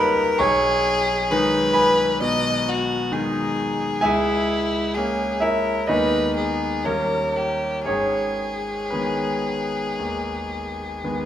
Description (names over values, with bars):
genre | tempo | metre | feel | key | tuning
classical, romantic duo for violin and grand piano | 54-66 BPM | 4/4 | rubato | G# minor | A4 = 437 Hz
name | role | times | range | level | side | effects
clear violin | melody | 0.0-11.3 s | E4 to D#5 | -23 LUFS | left 2 dB | none
bright concert grand piano | accompaniment | 0.0-11.3 s | G#1 to C#6 | -22 LUFS | right 1 dB | none
room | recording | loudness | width
wet recital hall reverb, RT60 1.5 s | minimal, uncompressed stereo recording | -20 LUFS | side -10 dB against mid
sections
0.0-11.3 A section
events
none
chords
0.4 G#m/B; 4.0 A#m7b5/C#; 5.9 G#m/D#; 6.8 D#7; 7.9 G#m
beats
| 0.39 1.30 2.21 3.13 | 4.04 4.96 5.88 6.85 | 7.87 8.93 9.97 11.03